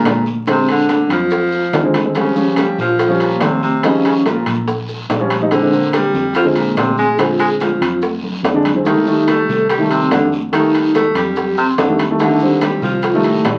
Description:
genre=Afro-Cuban jazz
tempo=143 BPM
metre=4/4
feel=straight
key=Bb major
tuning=A4 = 441 Hz
part: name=vibraphone with medium mallets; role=melody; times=0.0-13.6 s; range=A3 to A4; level=-20 LUFS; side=equal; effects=none
part: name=clear baritone saxophone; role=second line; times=0.0-13.6 s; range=A2 to A3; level=-21 LUFS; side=equal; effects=none
part: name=dark grand piano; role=accompaniment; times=0.0-13.6 s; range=D3 to Eb4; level=-20 LUFS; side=equal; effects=none
part: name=fingered electric bass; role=bass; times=0.0-13.6 s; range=Bb1 to F2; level=-28 LUFS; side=equal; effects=none
part: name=bongos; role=percussion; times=0.1-13.6 s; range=none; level=-25 LUFS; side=equal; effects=none
part: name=congas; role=percussion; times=0.1-13.6 s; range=none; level=-31 LUFS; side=equal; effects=none
part: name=guiro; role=percussion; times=0.1-13.6 s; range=none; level=-36 LUFS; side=equal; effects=none
part: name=maracas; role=percussion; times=0.1-13.6 s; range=none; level=-44 LUFS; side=equal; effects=none
part: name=timbales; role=percussion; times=0.1-13.6 s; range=none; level=-26 LUFS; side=equal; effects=none
room=moderate club reverb, RT60 0.7 s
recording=very old 78 rpm record, vinyl crackle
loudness=-15 LUFS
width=mono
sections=0.0-13.6 A section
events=drum fill 1.9, 8.0-8.9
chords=0.0 Bb7; 2.2 Eb7; 5.5 Bb7; 8.9 F7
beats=0.06 | 0.48 0.90 1.32 1.74 | 2.15 2.58 3.00 3.41 | 3.83 4.25 4.67 5.09 | 5.51 5.93 6.35 6.77 | 7.18 7.60 8.02 8.44 | 8.86 9.28 9.69 10.11 | 10.53 10.95 11.37 11.78 | 12.20 12.62 13.04 13.45

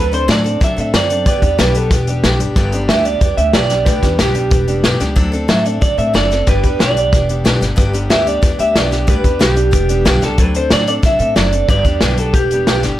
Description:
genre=rockabilly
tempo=184 BPM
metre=4/4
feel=straight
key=G major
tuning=A4 = 440 Hz
part: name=electric guitar through a small old amp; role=melody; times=0.0-12.8 s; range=G4 to E5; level=-17 LUFS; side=right 2 dB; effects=lush chorus, analog delay
part: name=picked steel-string acoustic guitar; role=accompaniment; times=0.0-13.0 s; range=G2 to A4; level=-20 LUFS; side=left 2 dB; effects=none
part: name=upright bass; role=bass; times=0.0-13.0 s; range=E1 to C3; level=-18 LUFS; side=equal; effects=none
part: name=vintage drum kit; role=drums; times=0.1-12.9 s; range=hi-hat, kick drum, snare drum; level=-15 LUFS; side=equal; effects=none
room=light reverb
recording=none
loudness=-12 LUFS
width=side -13 dB against mid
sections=0.0-2.6 A section; 2.6-13.0 A section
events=none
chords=0.0 D7; 1.3 G; 5.2 D7; 6.5 G; 10.4 D7; 11.7 G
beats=0.29 0.62 0.94 | 1.26 1.59 1.92 2.24 | 2.57 2.89 3.22 3.54 | 3.87 4.19 4.52 4.84 | 5.17 5.49 5.82 6.15 | 6.47 6.80 7.12 7.45 | 7.77 8.10 8.43 8.75 | 9.08 9.40 9.73 10.05 | 10.38 10.71 11.03 11.36 | 11.68 12.01 12.34 12.66 | 12.99

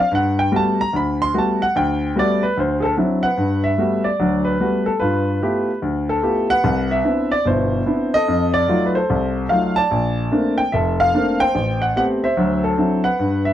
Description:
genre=solo jazz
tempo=147 BPM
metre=4/4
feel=swing 65% on 8ths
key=G major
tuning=A4 = 440 Hz
part: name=clear grand piano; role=solo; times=0.0-13.5 s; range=F1 to C6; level=-16 LUFS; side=equal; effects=none
room=light reverb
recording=dark, warm production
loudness=-16 LUFS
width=side -11 dB against mid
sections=0.0-3.4 A section; 3.4-13.5 B section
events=grand piano solo 0.0-3.4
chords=0.1 Gmaj9; 2.6 D9; 3.4 Gmaj9; 5.0 G13; 6.6 Cmaj9; 8.3 F7b9; 9.9 Bbmaj9; 11.5 Am9; 12.4 D9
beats=| 0.11 0.52 0.92 1.33 | 1.74 2.15 2.55 2.96 | 3.37 3.78 4.18 4.59 | 5.00 5.41 5.82 6.23 | 6.63 7.04 7.45 7.86 | 8.27 8.68 9.09 9.49 | 9.90 10.31 10.72 11.13 | 11.54 11.95 12.36 12.77 | 13.18

